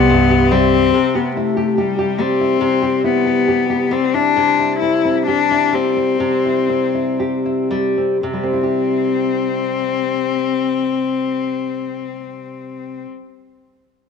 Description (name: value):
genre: acoustic folk-pop ballad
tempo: 57-72 BPM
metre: 4/4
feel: straight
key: C major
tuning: A4 = 441 Hz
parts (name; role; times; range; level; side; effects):
- warm cello; melody; 0.0-13.0 s; G3 to E4; -17 LUFS; left 8 dB; none
- nylon-string guitar; accompaniment; 0.0-13.5 s; G2 to G4; -19 LUFS; right 1 dB; none
- phased analog pad; sustained chords; 0.0-0.9 s; G4 to C6; -30 LUFS; right 2 dB; phaser, chorus
- upright bass; bass; 0.0-0.9 s; C2; -19 LUFS; right 3 dB; none
room: light reverb, small room reverb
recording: none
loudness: -15 LUFS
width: side -6 dB against mid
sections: 0.9-8.2 A section; 8.2-12.4 B section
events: slowing down 0.9-8.2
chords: 0.0 C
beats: 0.09 | 0.93 1.76 2.61 3.47 | 4.35 5.25 6.20 7.18 | 8.22 9.28 10.33 11.38